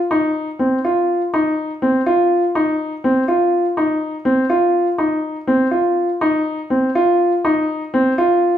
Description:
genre	progressive instrumental, progressive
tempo	245 BPM (eighths)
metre	5/8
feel	straight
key	unclear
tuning	A4 = 440 Hz
part	warm grand piano	solo	0.1-8.5 s	C4 to F4	-15 LUFS	equal	none
room	wet large studio reverb, RT60 1.1 s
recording	band playing live in one room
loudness	-15 LUFS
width	side -10 dB against mid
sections	0.0-8.6 A section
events	none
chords	none

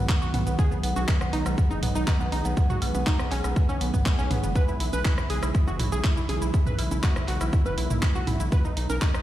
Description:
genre	progressive house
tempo	121 BPM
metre	4/4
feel	straight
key	B major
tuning	A4 = 441 Hz
part	airy breathy pad	sustained chords	0.0-9.2 s	B2 to G#4	-33 LUFS	right 1 dB	chorus, sidechain pumping
part	wide unison pluck	arpeggios	0.0-9.2 s	B3 to B4	-31 LUFS	right 1 dB	sidechain pumping, dub echo
part	round analog bass	bass	0.0-9.2 s	F#1 to B1	-28 LUFS	equal	tube saturation, sidechain pumping
part	electronic kick drum	drums	0.1-9.1 s	none	-23 LUFS	equal	none
part	house drum kit	drums	0.1-9.2 s	handclaps, hi-hat, rim click, shaker	-34 LUFS	equal	sidechain pumping on hats, sidechain pumping on cymbals, sidechain pumping on perc
part	electronic toms, congas and woodblock	percussion	0.3-9.0 s	none	-32 LUFS	right 2 dB	sidechain pumping on perc, sidechain pumping on toms
room	digital ambience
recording	played on a big sound system in a bare room, stone room reverb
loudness	-22 LUFS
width	side -13 dB against mid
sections	0.0-9.2 A section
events	none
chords	0.0 B6; 4.6 E6; 8.5 G#m

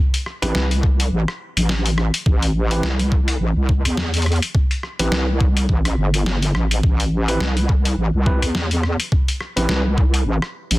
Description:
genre	glitch hop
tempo	105 BPM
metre	4/4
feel	swing 57% on 16ths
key	A minor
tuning	A4 = 441 Hz
part	boom bap sampler-style drum kit	drums	0.1-10.8 s	hi-hat, rim click, snare drum	-24 LUFS	left 1 dB	small room ambience
part	overdriven tine electric piano	stabs	0.4-9.8 s	C4 to B4	-27 LUFS	right 1 dB	fast tremolo, sidechain pumping, tape echo
part	wobble bass	bass	0.4-10.8 s	G1 to E2	-19 LUFS	equal	chorus, tube saturation
part	electronic kick drum	drums	0.8-10.1 s	none	-17 LUFS	equal	small room ambience
room	little or no reverb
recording	dense, heavily limited modern master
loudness	-17 LUFS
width	side -19 dB against mid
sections	0.0-10.8 A section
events	none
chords	0.0 Am7

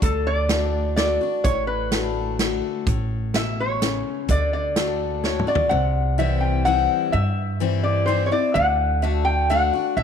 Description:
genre	honky-tonk and classic country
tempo	127 BPM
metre	3/4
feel	straight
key	D major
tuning	A4 = 440 Hz
part	lap resonator guitar	melody	0.0-10.0 s	A4 to G5	-22 LUFS	equal	none
part	picked steel-string acoustic guitar	accompaniment	0.0-10.0 s	G2 to F#4	-26 LUFS	left 11 dB	none
part	upright bass	bass	0.0-10.0 s	A1 to G2	-24 LUFS	right 1 dB	none
part	natural country drum kit	drums	0.0-5.7 s	hi-hat, kick drum, snare drum, toms	-25 LUFS	right 1 dB	none
room	light reverb, small room ambience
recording	1960s-style stereo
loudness	-19 LUFS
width	side -7 dB against mid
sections	0.0-5.7 A section; 5.7-10.0 B section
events	drum fill 5.2-5.7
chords	0.0 D; 2.9 A; 4.3 D; 5.7 C; 8.6 D

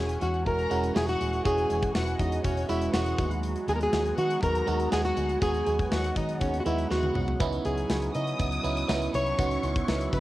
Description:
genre	1980s-style pop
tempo	121 BPM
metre	4/4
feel	straight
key	unclear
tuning	A4 = 440 Hz
part	flamenco guitar	melody	0.0-10.2 s	C#4 to D#5	-30 LUFS	left 1 dB	none
part	warm symphonic violin section	second line	0.0-10.2 s	C#5 to D#6	-36 LUFS	left 2 dB	cassette tape, analog delay
part	FM electric piano	accompaniment	0.0-10.2 s	G#3 to G#4	-32 LUFS	right 5 dB	chorus, cassette tape
part	phased analog pad	sustained chords	0.0-10.2 s	E3 to F#4	-36 LUFS	equal	phaser, chorus, cassette tape
part	vintage muted fingered electric bass	bass	0.0-10.2 s	D#1 to D#3	-31 LUFS	left 1 dB	none
part	big rock drum kit	drums	0.1-10.2 s	hi-hat, kick drum, snare drum, tambourine, toms	-32 LUFS	left 1 dB	cassette tape
room	light reverb, small room ambience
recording	home recording on cassette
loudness	-25 LUFS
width	side -16 dB against mid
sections	0.0-10.2 A section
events	drum fill 6.9-7.4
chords	0.0 E69; 3.2 G#m7; 7.4 C#m9

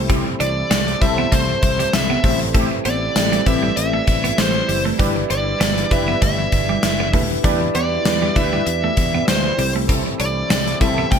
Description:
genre	1980s-style pop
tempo	98 BPM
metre	4/4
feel	swing 55% on 16ths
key	unclear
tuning	A4 = 443 Hz
part	tine electric piano	accompaniment	0.0-11.2 s	C4 to E5	-25 LUFS	equal	medium stereo tremolo
part	phased analog pad	sustained chords	0.0-11.2 s	B2 to E4	-29 LUFS	right 2 dB	phaser, chorus
part	twelve-string electric guitar	riff	0.0-11.2 s	G3 to D4	-26 LUFS	right 3 dB	wide subtle chorus
part	fingered electric bass	bass	0.0-11.2 s	D#1 to E2	-25 LUFS	equal	none
part	mellow synth brass	stabs	0.1-11.1 s	C4 to B4	-29 LUFS	left 3 dB	chorus, phaser, ping-pong delay
part	gated 80s drum kit	drums	0.1-11.2 s	hi-hat, kick drum, snare drum, tambourine	-19 LUFS	equal	gated reverb
part	dark smooth lead guitar	melody	0.4-11.2 s	C5 to G5	-22 LUFS	equal	overdrive, ping-pong delay
room	light reverb, studio reverb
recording	bright 1980s-style digital production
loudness	-16 LUFS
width	side -7 dB against mid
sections	0.0-11.2 A section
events	none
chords	0.0 C6; 2.2 Am7; 5.0 G6; 7.4 Em7; 9.6 C6

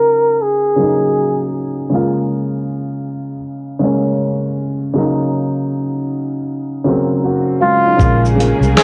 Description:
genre	lo-fi hip hop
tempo	79 BPM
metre	4/4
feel	swing 61% on 16ths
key	Bb minor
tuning	A4 = 440 Hz
part	warm flugelhorn	melody	0.0-1.5, 7.6-8.8 s	F4 to Bb4	-16 LUFS	equal	low-pass filter, cassette tape
part	dark upright piano	accompaniment	0.0-8.8 s	Db3 to Gb4	-19 LUFS	equal	cassette tape, low-pass filter
part	clear studio string section	sustained chords	8.0-8.8 s	Db3 to Ab4	-23 LUFS	equal	low-pass filter, cassette tape
part	vintage muted fingered electric bass	bass	8.0-8.7 s	Bb1 to C2	-17 LUFS	equal	tube saturation
part	boom bap sampler-style drum kit	drums	8.0-8.8 s	finger snaps, hi-hat, kick drum, shaker, snare drum	-17 LUFS	equal	vintage 12-bit sampler grit, cassette tape
room	wet booth ambience, RT60 0.2 s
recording	home recording on cassette, low-pass filter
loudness	-16 LUFS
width	mono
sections	0.0-8.0 A section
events	filter sweep 0.0-8.0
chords	0.0 Ebm7; 1.9 Bbm7; 5.0 Ebm7; 8.0 Bbm7

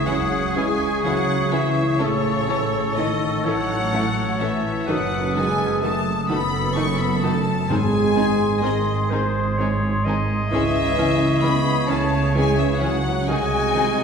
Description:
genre	classical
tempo	42 BPM (dotted quarters)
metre	6/8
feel	rubato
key	C# minor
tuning	A4 = 440 Hz
part	warm studio violin section	melody	0.0-14.0 s	C#5 to C#6	-26 LUFS	left 4 dB	none
part	bright clarinet	second line	0.0-14.0 s	G#4 to D#5	-29 LUFS	left 2 dB	none
part	mellow hollow silver concert flute	second line	0.0-14.0 s	B#5 to D#6	-29 LUFS	left 1 dB	none
part	mellow oboe	second line	0.0-14.0 s	F#4 to A4	-31 LUFS	left 2 dB	none
part	dark French horn section	sustained chords	0.0-14.0 s	C#3 to C#4	-25 LUFS	equal	none
part	dark studio double bass section	bass	0.0-14.0 s	F#1 to C#2	-26 LUFS	right 3 dB	none
part	warm studio cello section	bass	0.0-14.0 s	F#2 to C#3	-26 LUFS	right 2 dB	none
part	warm studio violin section	second line	0.1-13.9 s	C#4 to A4	-32 LUFS	left 2 dB	none
part	rich studio viola section	accompaniment	0.1-13.8 s	D#3 to D#4	-30 LUFS	right 1 dB	none
part	timpani	percussion	7.7-9.1 s	G#2	-28 LUFS	right 1 dB	none
room	wet scoring stage reverb, RT60 2.0 s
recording	heard from further back in the room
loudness	-18 LUFS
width	side -6 dB against mid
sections	0.0-14.0 A section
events	none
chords	0.0 C#m; 2.0 A; 4.9 D#dim/F#; 7.7 G#; 10.5 C#m; 13.3 G#7/B#

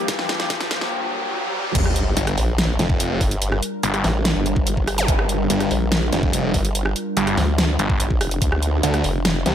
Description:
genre	heavy wobble dubstep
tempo	144 BPM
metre	4/4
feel	half-time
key	G minor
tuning	A4 = 439 Hz
part	evolving wavetable pad	sustained chords	0.0-9.5 s	G2 to C5	-27 LUFS	equal	phaser, built-in reverb, sidechain pumping
part	riser, sub drop and zap	sound effects	0.0-5.1 s	none	-25 LUFS	equal	none
part	dubstep drum kit	drums	0.1-9.5 s	crash cymbal, hi-hat, rim click, snare drum	-24 LUFS	equal	high-pass filter on snare, high-pass filter on hats, high-pass filter on cymbals
part	electronic kick drum	drums	0.1-8.5 s	none	-22 LUFS	equal	none
part	formant-sweep wobble bass	bass	1.8-9.4 s	F1 to D2	-22 LUFS	equal	chorus, overdrive
part	snarling distorted saw bass	bass	2.2-9.5 s	F1 to D2	-21 LUFS	equal	distortion, overdrive
room	light reverb, digital ambience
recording	high-pass filter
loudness	-18 LUFS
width	side -10 dB against mid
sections	0.0-1.8 A section; 1.8-9.5 B section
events	build-up 0.0-1.8; drum fill 0.0-0.9; riser 0.0-1.8; drop 1.8-9.5; impact 1.8-3.4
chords	0.0 Gm7; 8.4 Dm7

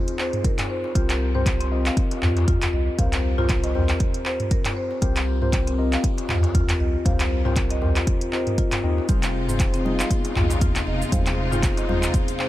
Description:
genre	afro house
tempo	118 BPM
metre	4/4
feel	swing 56% on 16ths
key	unclear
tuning	A4 = 439 Hz
part	mellow tine electric piano	stabs	0.0-12.5 s	C4 to Eb5	-28 LUFS	left 2 dB	analog chorus, sidechain pumping, analog delay
part	afro-pop drum kit	drums	0.1-12.5 s	handclaps, hi-hat, toms	-28 LUFS	equal	none
part	marimba with medium mallets	arpeggios	0.2-12.5 s	C4 to F5	-30 LUFS	equal	sidechain pumping, analog delay
part	darbuka	percussion	0.2-12.0 s	none	-29 LUFS	equal	none
part	electronic kick drum	drums	0.4-12.3 s	none	-22 LUFS	equal	none
part	round analog bass	bass	1.0-12.1 s	F1 to F2	-25 LUFS	equal	sidechain pumping
part	clear studio string section	sustained chords	9.1-12.5 s	C3 to F4	-30 LUFS	left 1 dB	sidechain pumping
part	congas	percussion	9.1-12.5 s	none	-34 LUFS	equal	none
part	maracas	percussion	9.1-12.4 s	none	-38 LUFS	right 5 dB	none
room	light reverb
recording	none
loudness	-20 LUFS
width	side -15 dB against mid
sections	0.0-12.5 A section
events	none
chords	0.0 Fm7; 1.0 C7sus4; 9.1 Fm7

